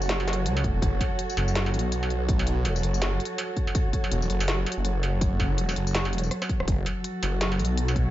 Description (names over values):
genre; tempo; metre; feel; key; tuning
half-time drum and bass; 164 BPM; 4/4; swing 59% on 16ths, half-time; F# minor; A4 = 439 Hz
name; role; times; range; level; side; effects
dark studio cello section; sustained chords; 0.0-8.1 s; F#3 to C#5; -31 LUFS; right 1 dB; sidechain pumping
phased detuned saw bass; bass; 0.0-8.1 s; E1 to C#2; -26 LUFS; equal; phaser
industrial drum kit; drums; 0.0-8.0 s; hi-hat, rim click, snare drum, struck metal, tambourine; -30 LUFS; equal; small room ambience
electronic kick drum; drums; 0.6-8.0 s; none; -26 LUFS; equal; small room ambience
room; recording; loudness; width
light reverb; nothing above 7.6 kHz; -24 LUFS; side -14 dB against mid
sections
0.0-6.7 A section; 6.7-8.1 A section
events
drop 0.0-6.7, 6.7-8.1; drum fill 6.3-6.7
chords
0.0 F#m